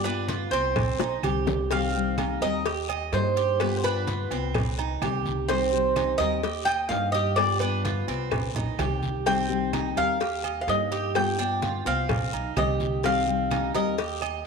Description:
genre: latin, Cuban son and guajira.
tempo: 127 BPM.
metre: 4/4.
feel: straight.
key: C harmonic minor.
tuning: A4 = 440 Hz.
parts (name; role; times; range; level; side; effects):
Cuban tres; melody; 0.0-14.5 s; B4 to G5; -27 LUFS; right 2 dB; none.
nylon-string guitar; accompaniment; 0.0-14.0 s; C3 to G4; -31 LUFS; left 14 dB; none.
Cuban tres; arpeggios; 0.0-14.5 s; C4 to Eb5; -32 LUFS; right 12 dB; none.
upright bass; bass; 0.0-14.4 s; B1 to G2; -31 LUFS; equal; none.
congas; percussion; 0.0-14.5 s; none; -32 LUFS; equal; none.
agogo bells and timbales; percussion; 0.1-14.5 s; none; -36 LUFS; right 16 dB; none.
cowbell and bongos; percussion; 0.3-14.2 s; none; -33 LUFS; left 13 dB; none.
guiro; percussion; 0.3-14.4 s; none; -42 LUFS; left 15 dB; none.
claves; percussion; 0.8-14.5 s; none; -43 LUFS; right 15 dB; none.
room: light reverb, studio reverb.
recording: 1960s-style stereo with parts hard left and right.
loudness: -23 LUFS.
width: side -5 dB against mid.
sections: 0.0-1.7 A section; 1.7-14.5 A section.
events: drum fill 1.0-1.7.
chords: 0.0 G7; 0.8 Cm; 2.7 Eb; 3.6 G7; 4.5 Cm; 6.4 Eb; 7.4 G7; 8.3 Cm; 10.2 Eb; 11.2 G7; 12.1 Cm.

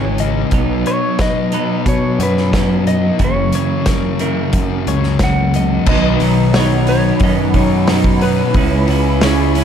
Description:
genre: rock, shoegaze and dream pop.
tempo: 90 BPM.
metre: 4/4.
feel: straight.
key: B major.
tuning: A4 = 441 Hz.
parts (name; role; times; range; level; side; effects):
direct-recorded clean electric guitar; arpeggios; 0.0-9.6 s; A#4 to D#5; -26 LUFS; left 10 dB; wide subtle chorus, slapback echo.
crunchy overdriven guitar; riff; 0.0-9.6 s; F#2 to E4; -20 LUFS; right 12 dB; reverse reverb.
thick fuzz guitar; riff; 0.0-9.6 s; F#2 to C#4; -19 LUFS; left 9 dB; distortion, wide subtle chorus.
picked electric bass; bass; 0.0-9.6 s; F#1 to B2; -17 LUFS; equal; none.
loose indie drum kit; drums; 0.2-9.6 s; crash cymbal, hi-hat, kick drum, snare drum; -19 LUFS; equal; none.
mellow electric guitar; melody; 0.9-8.8 s; B4 to F#5; -22 LUFS; equal; slapback echo.
airy breathy pad; sustained chords; 5.9-9.6 s; D#4 to B5; -24 LUFS; equal; chorus.
room: studio reverb.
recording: dark, warm production.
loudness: -12 LUFS.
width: side -8 dB against mid.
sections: 0.0-5.9 A section; 5.9-9.6 B section.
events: none.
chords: 0.0 C#m; 0.5 Badd9; 3.2 F#7; 5.9 Badd9; 8.6 C#m7.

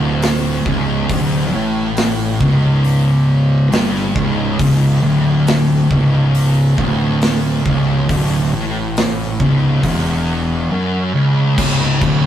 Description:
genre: stoner and doom metal.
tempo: 69 BPM.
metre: 4/4.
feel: straight.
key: unclear.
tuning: A4 = 439 Hz.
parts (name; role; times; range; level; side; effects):
thick fuzz guitar; riff; 0.0-12.3 s; C#2 to A2; -18 LUFS; left 5 dB; distortion.
thick fuzz guitar; riff; 0.0-12.3 s; C#2 to A2; -16 LUFS; right 3 dB; distortion.
fuzz fingered electric bass; bass; 0.0-12.3 s; C#1 to A1; -22 LUFS; equal; overdrive.
big rock drum kit; drums; 0.2-12.2 s; crash cymbal, hi-hat, kick drum, snare drum; -20 LUFS; equal; none.
room: moderate stone room reverb, RT60 1.1 s.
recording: rough rehearsal-room recording, warm saturation.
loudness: -13 LUFS.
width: side -10 dB against mid.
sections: 0.0-11.6 A section.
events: none.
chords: 0.0 C#m; 11.6 N.C..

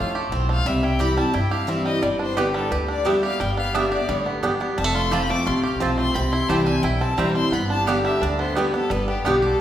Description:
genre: bluegrass.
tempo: 175 BPM.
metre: 4/4.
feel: straight.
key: G mixolydian.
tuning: A4 = 439 Hz.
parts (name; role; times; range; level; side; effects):
clear fiddle; second line; 0.0-9.6 s; F4 to D6; -27 LUFS; left 3 dB; none.
picked steel-string acoustic guitar; accompaniment; 0.0-9.6 s; F2 to G4; -24 LUFS; left 1 dB; none.
bluegrass banjo; arpeggios; 0.0-9.6 s; G3 to G4; -26 LUFS; right 3 dB; none.
upright bass; bass; 0.0-9.5 s; F1 to G2; -27 LUFS; equal; none.
mandolin; stabs; 2.4-9.3 s; B3 to A5; -28 LUFS; right 4 dB; none.
room: wet recital hall reverb, RT60 1.6 s.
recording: recorded in a church or concert hall.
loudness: -19 LUFS.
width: side -11 dB against mid.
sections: 0.0-9.6 A section.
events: fiddle solo 0.0-9.6.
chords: 0.0 F; 0.7 C; 2.0 G; 4.8 F; 6.2 C; 7.5 G.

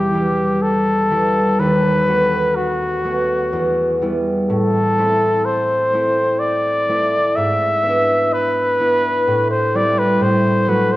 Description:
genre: classical, romantic duo for trumpet and harp.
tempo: 62 BPM.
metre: 3/4.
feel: rubato.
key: E minor.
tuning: A4 = 439 Hz.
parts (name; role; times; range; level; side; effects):
warm trumpet; melody; 0.0-11.0 s; F#4 to E5; -17 LUFS; left 1 dB; none.
concert harp; accompaniment; 0.0-11.0 s; D#2 to F#4; -18 LUFS; right 1 dB; none.
room: wet concert hall reverb, RT60 2.1 s.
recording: worn, warbling old tape, cassette tape, warbly pitch drift.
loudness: -15 LUFS.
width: side -17 dB against mid.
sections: 0.0-11.0 A section.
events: none.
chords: 0.0 Em; 1.6 B7/D#; 3.5 Em; 4.5 Am; 7.4 E7/G#; 9.3 Am7; 10.2 F#dim/A.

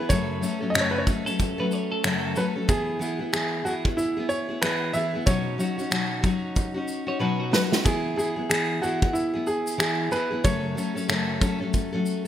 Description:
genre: acoustic pop.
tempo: 93 BPM.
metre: 4/4.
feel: swing 60% on 16ths.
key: E major.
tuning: A4 = 440 Hz.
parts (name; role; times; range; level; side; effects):
clear upright piano; melody; 0.0-11.4 s; E4 to E5; -28 LUFS; right 1 dB; none.
twelve-string electric guitar; second line; 0.0-2.7, 7.1-7.8 s; F#4 to C#5; -33 LUFS; right 2 dB; lush chorus, digital delay.
fingerpicked steel-string acoustic guitar; accompaniment; 0.0-12.3 s; F#2 to A4; -27 LUFS; left 2 dB; none.
loose indie drum kit; drums; 0.1-12.2 s; finger snaps, kick drum, shaker, snare drum; -26 LUFS; equal; gated reverb.
room: moderate lush hall reverb, RT60 1.8 s, studio ambience.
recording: bright 1980s-style digital production.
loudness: -23 LUFS.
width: side -11 dB against mid.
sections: 0.0-12.3 A section.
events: drum fill 7.2-7.9.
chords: 0.1 F#m; 2.7 E; 5.3 Badd9; 7.9 E; 10.4 F#m.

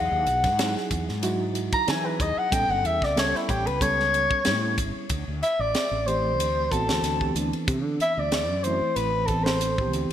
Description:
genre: electric jazz fusion.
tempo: 93 BPM.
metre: 4/4.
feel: swing 54% on 16ths.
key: D mixolydian from 5.1 s.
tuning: A4 = 440 Hz.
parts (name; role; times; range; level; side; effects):
breathy soprano saxophone; melody; 0.0-9.9 s; E4 to Bb5; -24 LUFS; left 1 dB; none.
mellow reed electric piano; accompaniment; 0.0-10.1 s; E3 to A4; -31 LUFS; right 2 dB; fast tremolo.
fretless electric bass; bass; 0.0-10.1 s; G1 to E3; -29 LUFS; equal; ensemble chorus.
tight funk drum kit; drums; 0.3-10.1 s; hi-hat, kick drum, ride cymbal, snare drum; -30 LUFS; equal; gated reverb.
room: moderate lush hall reverb, RT60 2.1 s.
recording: bright 1980s-style digital production.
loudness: -22 LUFS.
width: side -10 dB against mid.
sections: 0.0-5.1 A section; 5.1-10.1 B section.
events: soprano saxophone solo 0.0-5.1.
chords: 0.0 Emaj9; 2.5 A9; 5.1 D13sus4.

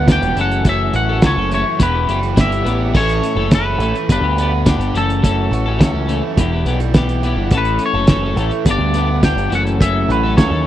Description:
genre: indie rock.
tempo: 105 BPM.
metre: 4/4.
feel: straight.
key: unclear.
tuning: A4 = 440 Hz.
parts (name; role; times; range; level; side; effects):
twangy electric guitar; melody; 0.0-10.7 s; A4 to G5; -20 LUFS; left 1 dB; wide subtle chorus.
overdriven semi-hollow guitar; riff; 0.0-10.7 s; E2 to A4; -24 LUFS; right 8 dB; wide subtle chorus, tape echo.
twelve-string electric guitar; riff; 0.0-10.7 s; E3 to A4; -21 LUFS; left 6 dB; none.
growling picked electric bass; bass; 0.0-10.7 s; E1 to D#2; -19 LUFS; equal; overdrive.
cloth-damped thuddy drum kit; drums; 0.1-10.5 s; crash cymbal, hi-hat, kick drum, snare drum; -14 LUFS; equal; none.
room: small room ambience.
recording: dry, close 1970s-style studio recording.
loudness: -13 LUFS.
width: side -12 dB against mid.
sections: 0.0-10.7 A section.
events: none.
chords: 0.4 F#m7; 1.8 Em; 2.9 A; 4.1 G; 4.9 F#m7; 6.4 Em; 7.5 A; 8.7 G; 9.5 F#m7.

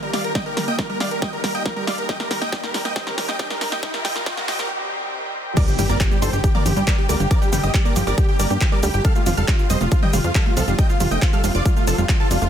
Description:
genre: uplifting trance.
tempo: 138 BPM.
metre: 4/4.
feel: straight.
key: G minor.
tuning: A4 = 440 Hz.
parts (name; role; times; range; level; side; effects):
big supersaw lead; melody; 0.0-12.5 s; F4 to G5; -25 LUFS; right 1 dB; sidechain pumping, ping-pong delay.
shimmering ambient pad; sustained chords; 0.0-12.5 s; C3 to G4; -30 LUFS; equal; chorus, built-in reverb, sidechain pumping.
wide unison pluck; arpeggios; 0.0-12.5 s; F3 to Bb3; -29 LUFS; right 4 dB; sidechain pumping, ping-pong delay.
punchy analog drum machine; drums; 0.0-12.5 s; crash cymbal, handclaps, hi-hat, shaker, snare drum, toms; -27 LUFS; left 1 dB; sidechain pumping on hats, sidechain pumping on toms, sidechain pumping on cymbals, sidechain pumping on perc.
riser and impact; sound effects; 1.4-7.3 s; none; -30 LUFS; equal; none.
electronic kick drum; drums; 0.4-12.2 s; none; -19 LUFS; equal; overdrive.
wide unison pluck; second line; 5.6-12.5 s; F5 to G6; -32 LUFS; right 1 dB; vintage 12-bit sampler grit, sidechain pumping, ping-pong delay.
plucky analog bass; bass; 5.8-12.5 s; F1 to G2; -21 LUFS; equal; sidechain pumping.
room: digital ambience.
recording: dense, heavily limited modern master, high-pass filter.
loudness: -18 LUFS.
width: side -9 dB against mid.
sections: 0.0-5.6 A section; 5.6-12.5 B section.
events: build-up 0.0-5.6; drum fill 0.0-4.7; riser 1.4-4.7; break 4.7-5.6; drop 5.6-12.5; impact 5.6-7.3.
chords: 0.0 Eb; 2.1 Cm; 5.6 Gm; 9.0 F.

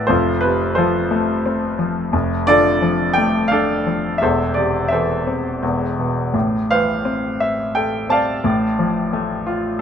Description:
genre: classical, lyrical solo piano.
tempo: 87 BPM.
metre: 3/4.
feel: rubato.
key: A minor.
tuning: A4 = 440 Hz.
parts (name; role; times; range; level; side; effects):
clear grand piano; solo; 0.0-9.8 s; E1 to A5; -16 LUFS; equal; none.
room: moderate small room reverb, RT60 0.5 s.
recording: none.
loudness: -16 LUFS.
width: side -8 dB against mid.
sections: 0.0-9.8 A section.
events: none.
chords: 0.1 F; 2.1 Dm/F; 4.2 Am/E; 5.6 E5; 6.3 Amadd9; 8.4 Dm/A.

